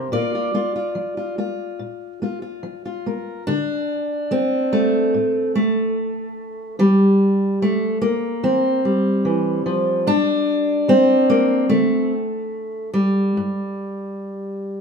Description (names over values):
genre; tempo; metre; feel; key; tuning
folk, solo fingerstyle acoustic guitar; 73 BPM; 4/4; straight; G dorian from 3.5 s; A4 = 440 Hz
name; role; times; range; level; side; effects
fingerpicked steel-string acoustic guitar; solo; 0.0-14.8 s; G2 to D5; -18 LUFS; equal; none
room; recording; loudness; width
wet stone room reverb, RT60 1.1 s; band playing live in one room; -17 LUFS; side -6 dB against mid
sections
0.0-3.5 A section; 3.5-14.8 B section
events
none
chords
0.1 Bb; 3.5 D5; 6.8 C/E; 10.1 G5